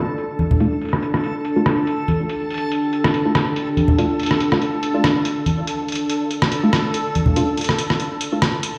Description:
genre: deep dubstep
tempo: 142 BPM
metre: 4/4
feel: swing 54% on 16ths, half-time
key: D minor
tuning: A4 = 440 Hz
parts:
  - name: deep dark ambient pad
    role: sustained chords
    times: 0.0-8.8 s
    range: D4 to G5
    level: -26 LUFS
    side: equal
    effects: chorus, built-in reverb
  - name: backwards swelling texture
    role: texture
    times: 0.0-8.8 s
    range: A4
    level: -29 LUFS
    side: equal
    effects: built-in reverb
  - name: trip hop sampler-style drum kit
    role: drums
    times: 0.2-8.7 s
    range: hi-hat, rim click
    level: -24 LUFS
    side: equal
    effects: overdrive, low-pass filter on hats, low-pass filter on snare, low-pass filter on cymbals
  - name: congas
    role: percussion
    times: 0.4-7.3 s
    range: none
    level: -22 LUFS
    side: equal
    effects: none
  - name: filtered dub chord stab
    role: stabs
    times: 0.6-8.4 s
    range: A3 to F4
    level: -26 LUFS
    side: equal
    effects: subtle chorus, dub echo
room: wet echo chamber reverb, RT60 2.2 s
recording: played on a big sound system in a bare room, stone room reverb, faint mains hum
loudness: -20 LUFS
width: mono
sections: 0.0-8.8 A section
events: filter sweep on drum 0.0-8.8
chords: 0.0 Dm

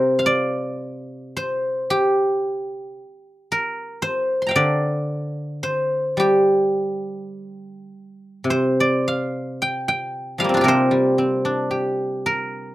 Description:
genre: chinese traditional, Chinese solo plucked strings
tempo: 52-58 BPM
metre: 2/4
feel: rubato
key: G yu mode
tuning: A4 = 440 Hz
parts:
  - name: guzheng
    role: solo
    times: 0.0-12.7 s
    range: C3 to C6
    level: -19 LUFS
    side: equal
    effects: none
room: light reverb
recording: rough home demo mix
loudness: -19 LUFS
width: side -16 dB against mid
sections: 0.0-12.7 A section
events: none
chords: none

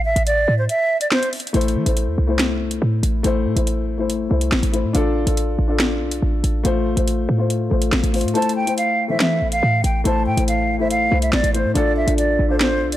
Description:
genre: hip hop, drill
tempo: 141 BPM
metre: 4/4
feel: half-time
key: A minor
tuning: A4 = 440 Hz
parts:
  - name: short 808-style bass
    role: bass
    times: 0.0-13.0 s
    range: A1 to E3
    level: -20 LUFS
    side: equal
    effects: none
  - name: breathy mellow silver concert flute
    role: melody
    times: 0.1-1.3, 8.3-13.0 s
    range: C5 to A5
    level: -20 LUFS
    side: right 2 dB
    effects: none
  - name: drill drum kit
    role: drums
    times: 0.2-13.0 s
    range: finger snaps, hi-hat, snare drum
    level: -23 LUFS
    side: equal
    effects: none
  - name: dark concert grand piano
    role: accompaniment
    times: 1.5-13.0 s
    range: E3 to C5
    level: -22 LUFS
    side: left 4 dB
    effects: none
room: small room reverb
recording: dark, warm production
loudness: -17 LUFS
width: side -13 dB against mid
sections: 0.0-13.0 A section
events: kick muted 0.7-1.5, 8.4-9.2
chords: 0.0 Asus4; 1.5 Am; 4.9 Dm/A; 6.6 F/A; 8.4 Am; 11.8 Dm/A

